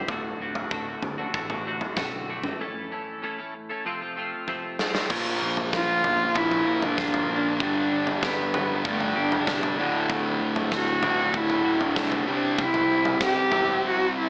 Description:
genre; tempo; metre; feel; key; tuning
quiet-loud alternative rock; 96 BPM; 4/4; straight; unclear; A4 = 439 Hz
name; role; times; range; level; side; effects
twelve-string electric guitar; arpeggios; 0.0-14.3 s; D2 to Bb4; -32 LUFS; equal; lush chorus
picked electric bass; bass; 0.1-13.8 s; D1 to D2; -39 LUFS; equal; none
big rock drum kit; drums; 0.1-13.7 s; crash cymbal, kick drum, snare drum, toms; -29 LUFS; equal; none
fuzz guitar; riff; 5.1-14.3 s; D2 to C4; -26 LUFS; equal; distortion
dark cello; melody; 5.7-14.3 s; A3 to G4; -24 LUFS; equal; none
room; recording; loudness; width
light reverb, small room ambience; AM radio sound; -22 LUFS; side -34 dB against mid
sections
0.0-5.1 A section; 5.1-14.3 B section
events
drum fill 4.5-5.1; break 13.8-14.3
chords
0.1 D; 2.6 A; 3.9 F; 5.1 Bb; 7.6 G; 9.8 D; 12.3 C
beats
| 0.09 0.72 1.35 1.97 | 2.60 3.23 3.86 4.48 | 5.11 5.74 6.36 6.98 | 7.61 8.23 8.86 9.48 | 10.10 10.72 11.35 11.97 | 12.59 13.21 13.84

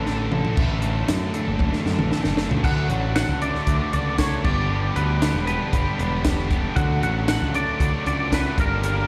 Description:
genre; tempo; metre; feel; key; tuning
indie rock; 116 BPM; 4/4; straight; D major; A4 = 440 Hz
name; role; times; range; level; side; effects
fuzz guitar; riff; 0.0-9.1 s; G2 to D4; -30 LUFS; equal; distortion
overdriven electric guitar; riff; 0.0-9.1 s; E3 to A4; -32 LUFS; equal; analog chorus, slapback echo
growling picked electric bass; bass; 0.0-9.0 s; E1 to F#2; -26 LUFS; equal; overdrive
compact cocktail drum kit; drums; 0.1-9.0 s; crash cymbal, hi-hat, kick drum, snare drum, tambourine, toms; -27 LUFS; equal; none
twangy electric guitar; melody; 2.6-9.1 s; Bb4 to F#5; -29 LUFS; equal; ensemble chorus, tape echo
room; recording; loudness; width
little or no reverb; live gig heard through the venue's PA, recital hall reverb; -22 LUFS; mono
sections
0.6-2.6 A section; 2.6-9.1 B section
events
drum fill 0.1-0.6, 1.6-2.6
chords
0.0 Asus4; 2.6 Dmaj7; 4.4 G; 6.8 Dmaj7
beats
0.07 | 0.58 1.10 1.61 2.13 | 2.64 3.16 3.67 4.19 | 4.70 5.22 5.74 6.25 | 6.77 7.29 7.80 8.32 | 8.83

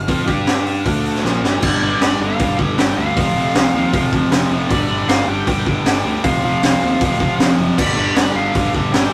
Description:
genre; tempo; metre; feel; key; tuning
hard rock; 156 BPM; 4/4; straight; unclear; A4 = 441 Hz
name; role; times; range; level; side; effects
biting lead guitar; melody; 0.0-9.1 s; D5 to G5; -26 LUFS; equal; overdrive
crunchy overdriven guitar; riff; 0.0-9.1 s; F2 to G4; -27 LUFS; equal; none
distorted electric guitar; riff; 0.0-9.1 s; F2 to G4; -24 LUFS; equal; overdrive
fuzz fingered electric bass; bass; 0.0-9.1 s; F1 to G2; -26 LUFS; equal; overdrive
raw garage drum kit; drums; 0.1-9.0 s; crash cymbal, hi-hat, kick drum, snare drum; -20 LUFS; equal; none
distorted electric guitar; riff; 1.6-9.1 s; F2 to G3; -26 LUFS; equal; none
room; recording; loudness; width
moderate small room reverb, RT60 0.5 s; rough rehearsal-room recording, warm saturation; -17 LUFS; mono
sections
0.0-1.6 A section; 1.6-9.1 B section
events
drum fill 1.2-1.6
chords
0.0 G5; 0.9 D5; 1.2 Gm; 1.6 G5; 3.2 F5; 4.7 G5; 6.2 F5; 7.8 G5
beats
| 0.08 0.47 0.86 1.24 | 1.63 2.01 2.40 2.78 | 3.17 3.55 3.94 4.32 | 4.71 5.09 5.48 5.86 | 6.25 6.63 7.01 7.40 | 7.78 8.17 8.55 8.94

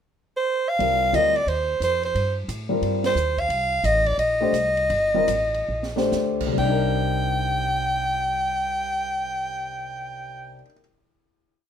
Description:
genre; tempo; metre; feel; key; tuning
modal jazz; 124-178 BPM; 4/4; swing 64% on 8ths; C dorian; A4 = 437 Hz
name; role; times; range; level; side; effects
growling soprano saxophone; melody; 0.4-10.6 s; C5 to G5; -22 LUFS; right 1 dB; none
dark baby grand piano; accompaniment; 0.8-10.8 s; C3 to C5; -26 LUFS; left 3 dB; none
upright bass; bass; 0.8-10.6 s; G1 to A2; -30 LUFS; right 1 dB; none
open jazz drum kit; drums; 0.8-6.7 s; crash cymbal, hi-hat, kick drum, ride cymbal, snare drum; -36 LUFS; right 2 dB; none
room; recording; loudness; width
moderate studio reverb, RT60 0.8 s; minimal, uncompressed stereo recording; -20 LUFS; side -8 dB against mid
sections
0.0-0.8 pickup bar; 0.8-6.6 A section; 6.6-10.4 final chord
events
band accent 3.0; slowing down 3.5-6.6; drum fill 5.7-6.1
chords
0.0 N.C.; 0.8 Cm7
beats
0.12 0.46 | 0.80 1.13 1.47 1.81 | 2.15 2.49 2.82 3.16 | 3.50 3.84 4.18 4.54 | 4.90 5.29 5.69 6.12 | 6.58 7.07 7.55 8.03 | 8.51 9.00 9.48 9.96

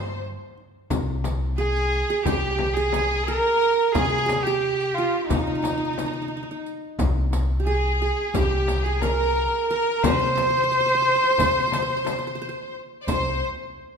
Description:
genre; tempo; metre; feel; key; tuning
Turkish makam ensemble; 177 BPM (eighths); 9/8; straight; C makam nihavent; A4 = 440 Hz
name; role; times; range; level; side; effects
rich kamancheh; melody; 0.0-13.4 s; Eb4 to C5; -24 LUFS; right 1 dB; none
bright studio violin section; second line; 0.0-13.4 s; Eb4 to D5; -28 LUFS; left 1 dB; none
qanun; second line; 0.0-13.4 s; Eb4 to C5; -30 LUFS; right 4 dB; none
upright bass; bass; 0.0-13.4 s; C2 to C3; -27 LUFS; equal; none
darbuka; percussion; 0.6-13.4 s; none; -32 LUFS; equal; none
frame drum; percussion; 0.9-13.4 s; none; -30 LUFS; left 7 dB; none
riq; percussion; 0.9-13.4 s; none; -36 LUFS; right 5 dB; none
room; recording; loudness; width
moderate recital hall reverb, RT60 1.6 s; minimal, uncompressed stereo recording; -20 LUFS; side -6 dB against mid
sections
0.9-13.1 A section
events
none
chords
none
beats
0.23 0.56 | 0.90 1.24 1.58 1.92 2.26 2.60 2.93 3.27 3.61 | 3.95 4.29 4.62 4.96 5.30 5.64 5.98 6.32 6.65 | 6.99 7.33 7.67 8.01 8.35 8.68 9.02 9.36 9.70 | 10.04 10.38 10.71 11.05 11.39 11.73 12.07 12.41 12.74 | 13.08 13.42

